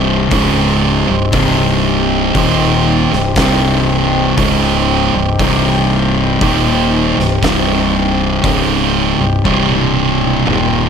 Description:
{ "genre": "stoner and doom metal", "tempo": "59 BPM", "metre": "4/4", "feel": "straight", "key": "C minor", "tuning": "A4 = 441 Hz", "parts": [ { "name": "analog drone", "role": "sustained chords", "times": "0.0-10.9 s", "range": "C4 to G4", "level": "-21 LUFS", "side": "left 1 dB", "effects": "chorus" }, { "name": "thick fuzz guitar", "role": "riff", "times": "0.0-10.9 s", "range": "C2 to Eb3", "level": "-16 LUFS", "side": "left 9 dB", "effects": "distortion" }, { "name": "thick fuzz guitar", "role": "riff", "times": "0.0-10.9 s", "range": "C2 to Eb3", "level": "-15 LUFS", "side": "right 9 dB", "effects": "distortion" }, { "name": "growling fingered electric bass", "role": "bass", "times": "0.0-10.9 s", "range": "C1 to Eb1", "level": "-20 LUFS", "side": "equal", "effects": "overdrive" }, { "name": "oversized low-tuned drum kit", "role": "drums", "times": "0.3-10.7 s", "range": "hi-hat, kick drum, snare drum, toms", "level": "-21 LUFS", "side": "equal", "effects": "none" } ], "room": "light reverb, small room ambience", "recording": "none", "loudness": "-11 LUFS", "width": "side -7 dB against mid", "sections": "0.0-10.9 A section", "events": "drum fill 9.5-10.9", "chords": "0.0 Cm" }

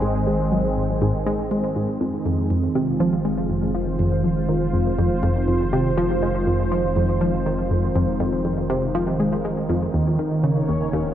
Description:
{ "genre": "ambient", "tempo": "121 BPM", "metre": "4/4", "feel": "straight", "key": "unclear", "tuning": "A4 = 441 Hz", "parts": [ { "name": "lush unison pad", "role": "sustained chords", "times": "0.0-11.1 s", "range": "Eb3 to Db5", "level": "-23 LUFS", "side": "right 1 dB", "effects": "chorus, phaser" }, { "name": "tight sequenced synth", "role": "riff", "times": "0.0-11.0 s", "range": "Eb2 to Ab3", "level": "-22 LUFS", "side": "equal", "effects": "chorus, analog delay" }, { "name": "round analog bass", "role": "bass", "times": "0.0-11.1 s", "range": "Eb1 to Ab1", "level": "-30 LUFS", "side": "equal", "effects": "none" } ], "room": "wet huge ambient reverb, RT60 8.4 s", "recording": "dark, warm production", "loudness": "-19 LUFS", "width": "side -11 dB against mid", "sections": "0.0-2.0 A section; 2.0-11.1 B section", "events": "none", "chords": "0.0 Ab; 2.0 Fm7; 9.9 Ebm7" }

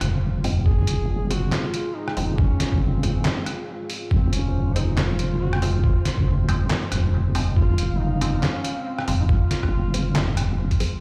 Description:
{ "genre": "deep dubstep", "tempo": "139 BPM", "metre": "4/4", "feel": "swing 57% on 16ths, half-time", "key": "F phrygian", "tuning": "A4 = 440 Hz", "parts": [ { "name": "mellow duduk", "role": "melody", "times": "0.0-10.5 s", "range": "C4 to Ab4", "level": "-35 LUFS", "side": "equal", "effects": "dub echo" }, { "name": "dark analog pad", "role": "sustained chords", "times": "0.0-11.0 s", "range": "Ab3 to F5", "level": "-36 LUFS", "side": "equal", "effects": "chorus" }, { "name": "deep soft wobble bass", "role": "bass", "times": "0.0-10.7 s", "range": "Eb1 to Gb1", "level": "-24 LUFS", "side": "equal", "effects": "chorus" }, { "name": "trip hop sampler-style drum kit", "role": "drums", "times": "0.0-10.9 s", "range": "handclaps, hi-hat, rim click, snare drum", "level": "-30 LUFS", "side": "equal", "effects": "overdrive" }, { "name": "filtered dub chord stab", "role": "stabs", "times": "0.4-11.0 s", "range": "F3 to C4", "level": "-36 LUFS", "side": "equal", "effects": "phaser, vintage 12-bit sampler grit, dub echo" }, { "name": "electronic kick drum", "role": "drums", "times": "0.7-10.8 s", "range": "none", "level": "-23 LUFS", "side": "equal", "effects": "overdrive" } ], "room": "light reverb, digital ambience", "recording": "played on a big sound system in a bare room, large studio reverb", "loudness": "-22 LUFS", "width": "mono", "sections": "0.0-11.0 A section", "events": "drop 0.0-11.0", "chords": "0.0 Fm" }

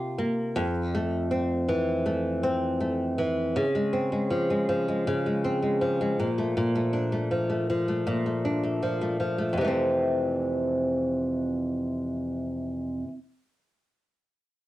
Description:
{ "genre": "indie pop", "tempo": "80 BPM", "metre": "4/4", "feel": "straight", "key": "F major", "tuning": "A4 = 436 Hz", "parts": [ { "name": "flamenco guitar", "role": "solo", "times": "0.0-13.2 s", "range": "F2 to G4", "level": "-25 LUFS", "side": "equal", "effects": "wide subtle chorus, warbly pitch drift" } ], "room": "moderate studio reverb, RT60 0.6 s", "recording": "home recording on cassette", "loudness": "-25 LUFS", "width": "side -16 dB against mid", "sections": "0.0-3.6 A section; 3.6-9.6 B section; 9.6-12.6 C section", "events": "none", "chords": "0.0 C7sus4; 0.6 Fmaj7; 3.6 Dbmaj7; 6.2 Bbmaj7; 9.6 Fmaj7" }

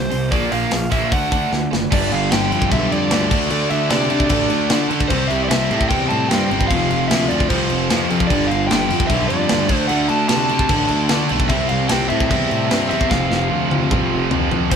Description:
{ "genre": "punk rock", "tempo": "150 BPM", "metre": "4/4", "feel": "straight", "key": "unclear", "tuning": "A4 = 440 Hz", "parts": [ { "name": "overdriven semi-hollow guitar", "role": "melody", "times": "0.0-14.8 s", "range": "C5 to A5", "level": "-23 LUFS", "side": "equal", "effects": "none" }, { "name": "sludgy distorted guitar", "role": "riff", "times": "0.0-14.8 s", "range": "F2 to D4", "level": "-24 LUFS", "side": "left 6 dB", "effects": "overdrive" }, { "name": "tight distorted guitar", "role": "riff", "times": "0.0-14.8 s", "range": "F2 to D4", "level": "-22 LUFS", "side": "right 9 dB", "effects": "distortion" }, { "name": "fuzz picked electric bass", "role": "bass", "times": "0.0-14.8 s", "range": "F1 to D3", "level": "-23 LUFS", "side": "equal", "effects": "overdrive" }, { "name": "tight metal drum kit", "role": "drums", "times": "0.1-14.8 s", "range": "crash cymbal, hi-hat, kick drum, snare drum, toms", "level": "-21 LUFS", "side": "left 1 dB", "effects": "none" }, { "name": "overdriven semi-hollow guitar", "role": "riff", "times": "1.9-14.8 s", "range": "F2 to D4", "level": "-24 LUFS", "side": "equal", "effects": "none" } ], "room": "light reverb", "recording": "band playing live in one room", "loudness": "-15 LUFS", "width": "side -7 dB against mid", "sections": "0.0-1.9 A section; 1.9-14.7 B section", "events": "drum fill 1.5-1.9, 13.1-14.7", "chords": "0.3 Bb5; 1.1 D; 1.9 G; 3.3 D5; 5.1 C; 6.7 F5; 8.3 G; 9.7 D5; 11.5 C; 13.1 F5" }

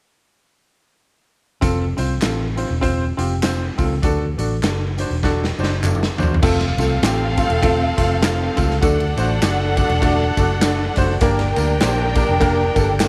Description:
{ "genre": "uptempo 1960s-style soul", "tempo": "100 BPM", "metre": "4/4", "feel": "swing 59% on 8ths", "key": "F major", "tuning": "A4 = 441 Hz", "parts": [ { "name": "bright upright piano", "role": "accompaniment", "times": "1.6-13.1 s", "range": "A3 to C5", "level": "-24 LUFS", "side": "equal", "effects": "none" }, { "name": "vintage muted fingered electric bass", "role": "bass", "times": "1.6-13.1 s", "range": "E1 to E2", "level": "-24 LUFS", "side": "equal", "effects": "none" }, { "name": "raw garage drum kit", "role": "drums", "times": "1.6-13.1 s", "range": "crash cymbal, hi-hat, kick drum, ride cymbal, snare drum, toms", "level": "-24 LUFS", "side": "equal", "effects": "none" }, { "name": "tambourine and handclaps", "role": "percussion", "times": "1.6-13.1 s", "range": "none", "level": "-35 LUFS", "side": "equal", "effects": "none" }, { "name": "clear studio string section", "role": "second line", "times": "6.4-13.1 s", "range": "C4 to G5", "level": "-24 LUFS", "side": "equal", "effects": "none" } ], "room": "light reverb, small room ambience", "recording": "none", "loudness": "-19 LUFS", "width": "mono", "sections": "1.6-6.4 A section; 6.4-13.1 B section", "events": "drum fill 5.2-6.4", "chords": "1.6 F; 4.0 D; 6.4 F; 8.8 D; 11.2 Gm" }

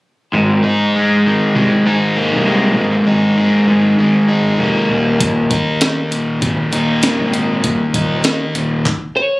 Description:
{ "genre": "indie rock", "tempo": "99 BPM", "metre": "4/4", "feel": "straight", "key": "unclear", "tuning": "A4 = 438 Hz", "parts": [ { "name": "crunchy overdriven guitar", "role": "riff", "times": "0.3-8.9 s", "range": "Eb2 to Eb4", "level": "-13 LUFS", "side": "equal", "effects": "none" }, { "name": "fuzz picked electric bass", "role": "bass", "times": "0.3-8.8 s", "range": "Eb1 to Ab2", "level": "-18 LUFS", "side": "equal", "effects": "overdrive" }, { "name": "breakbeat sampler-style drum kit", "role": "drums", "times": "5.2-9.0 s", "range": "handclaps, hi-hat, kick drum, snare drum", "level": "-18 LUFS", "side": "equal", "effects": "none" }, { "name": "lightly driven lead guitar", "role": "melody", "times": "9.2-9.4 s", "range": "Db5", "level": "-13 LUFS", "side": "equal", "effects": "none" } ], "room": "little or no reverb", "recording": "recorded on a phone in the room, club reverb, compression", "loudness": "-12 LUFS", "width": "side -21 dB against mid", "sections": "0.3-9.4 A section", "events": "none", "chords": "0.3 Abadd9; 4.9 Eb5" }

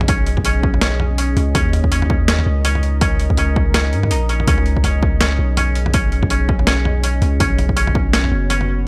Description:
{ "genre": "half-time drum and bass", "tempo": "164 BPM", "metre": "4/4", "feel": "swing 58% on 16ths, half-time", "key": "unclear", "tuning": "A4 = 440 Hz", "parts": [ { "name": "deep dark ambient pad", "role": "sustained chords", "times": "0.0-8.9 s", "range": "B3 to D#5", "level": "-30 LUFS", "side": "equal", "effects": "chorus, built-in reverb, sidechain pumping" }, { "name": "koto", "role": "arpeggios", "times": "0.0-8.9 s", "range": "C#4 to F#4", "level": "-25 LUFS", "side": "equal", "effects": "analog delay" }, { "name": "long sustained 808-style bass", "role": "bass", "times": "0.0-8.9 s", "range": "F#1 to G#2", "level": "-20 LUFS", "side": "equal", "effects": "none" }, { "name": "boom bap sampler-style drum kit", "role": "drums", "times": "0.0-8.7 s", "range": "hi-hat, snare drum, toms", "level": "-25 LUFS", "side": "equal", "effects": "studio reverb" }, { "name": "electronic kick drum", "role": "drums", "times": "0.1-8.0 s", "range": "none", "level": "-21 LUFS", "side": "equal", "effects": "studio reverb" } ], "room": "little or no reverb", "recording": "dry, gritty hardware recording", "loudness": "-17 LUFS", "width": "mono", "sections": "0.0-8.9 A section", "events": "none", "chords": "0.0 C#sus2; 1.5 D#5; 4.5 C#sus2; 7.4 B5" }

